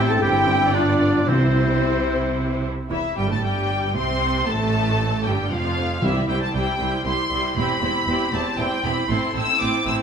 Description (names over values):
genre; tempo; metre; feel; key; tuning
quick classical-period movement for symphony orchestra; 116 BPM; 3/4; straight; C major; A4 = 440 Hz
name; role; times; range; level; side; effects
clear studio violin section; melody; 0.0-10.0 s; C5 to E6; -25 LUFS; left 2 dB; none
dark clarinet; second line; 0.0-2.6 s; C4 to E4; -28 LUFS; left 3 dB; none
warm studio violin section; second line; 0.0-10.0 s; E4 to A5; -30 LUFS; left 2 dB; none
rich studio viola section; accompaniment; 0.0-10.0 s; E3 to F4; -26 LUFS; right 2 dB; none
dark French horn section; sustained chords; 0.0-2.6 s; C4 to A4; -25 LUFS; left 4 dB; none
clear studio cello section; bass; 0.0-10.0 s; C2 to C3; -26 LUFS; right 3 dB; none
rich studio double bass section; bass; 0.0-9.9 s; E1 to C2; -28 LUFS; right 4 dB; none
mellow hollow silver concert flute; second line; 0.1-2.6 s; C5 to A5; -26 LUFS; left 1 dB; none
warm oboe; second line; 0.1-2.6 s; C4 to A4; -27 LUFS; right 2 dB; none
timpani; percussion; 1.3-2.1, 6.0-6.8 s; C3; -26 LUFS; equal; none
room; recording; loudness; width
wet recital hall reverb, RT60 1.6 s; none; -19 LUFS; side -7 dB against mid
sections
0.0-2.9 A section; 2.9-10.0 B section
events
none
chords
0.2 C/G; 0.7 G7; 1.3 C; 2.9 C/E; 4.5 Fadd9; 6.0 C; 7.6 C/E; 9.1 Am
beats
0.21 0.74 | 1.28 1.82 2.36 | 2.90 3.43 3.95 | 4.47 4.99 5.50 | 6.02 6.54 7.05 | 7.56 8.07 8.58 | 9.09 9.61